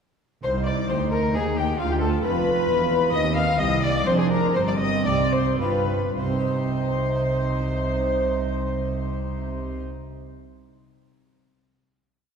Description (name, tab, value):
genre	classical, baroque-style concerto movement with solo episodes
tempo	103-134 BPM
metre	3/4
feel	straight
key	C minor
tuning	A4 = 441 Hz
part	rich chamber violin section	melody	0.4-9.8 s	F5 to F6	-32 LUFS	left 6 dB	none
part	warm violin	melody	0.4-9.8 s	F4 to F5	-28 LUFS	left 1 dB	none
part	warm chamber violin section	second line	0.4-9.8 s	F4 to F5	-28 LUFS	left 1 dB	none
part	dark chamber viola section	accompaniment	0.4-9.8 s	C4 to F4	-32 LUFS	right 2 dB	none
part	harpsichord	accompaniment	0.4-10.1 s	C2 to Eb5	-31 LUFS	equal	none
part	dark chamber double bass section	bass	0.4-9.8 s	E1 to Eb2	-29 LUFS	right 2 dB	none
part	warm chamber cello section	bass	0.4-9.8 s	C2 to C3	-28 LUFS	right 2 dB	none
room	wet concert hall reverb, RT60 2.2 s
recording	heard from further back in the room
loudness	-21 LUFS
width	side -6 dB against mid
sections	0.4-6.2 ritornello; 6.2-9.7 final chord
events	slowing down 2.5-6.2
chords	0.4 Cm; 1.8 Bdim; 3.1 Cm/Eb; 4.1 Dm7b5/F; 4.6 Cm/G; 5.6 G7; 6.2 Cm